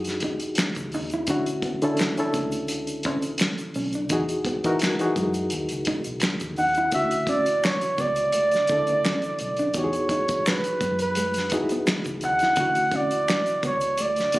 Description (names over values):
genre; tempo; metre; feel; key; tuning
R&B, neo-soul; 85 BPM; 4/4; swing 54% on 16ths; D major; A4 = 440 Hz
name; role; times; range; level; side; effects
bright reed electric piano; accompaniment; 0.0-14.4 s; C#3 to Bb4; -28 LUFS; left 1 dB; fast tremolo
vintage muted fingered electric bass; bass; 0.0-14.4 s; B1 to F#2; -34 LUFS; equal; none
warm soul drum kit; drums; 0.0-14.4 s; finger snaps, hi-hat, kick drum, snare drum; -28 LUFS; equal; none
tube shaker and finger snaps; percussion; 0.1-14.4 s; none; -36 LUFS; left 1 dB; none
nylon-string guitar; second line; 0.2-14.4 s; G#3 to E4; -30 LUFS; right 1 dB; none
mellow flugelhorn; melody; 6.6-14.4 s; B4 to F#5; -22 LUFS; right 1 dB; none
room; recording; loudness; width
light reverb; recorded on a phone in the room, club reverb; -22 LUFS; side -18 dB against mid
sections
0.0-6.9 A section; 6.9-14.4 B section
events
none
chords
0.0 Emaj9; 1.3 Dmaj9; 4.1 Emaj9; 6.9 Dmaj9; 9.7 Emaj9; 12.6 Dmaj9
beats
0.57 | 1.27 1.98 2.69 3.39 | 4.10 4.80 5.51 6.21 | 6.92 7.63 8.33 9.04 | 9.74 10.45 11.16 11.86 | 12.57 13.27 13.98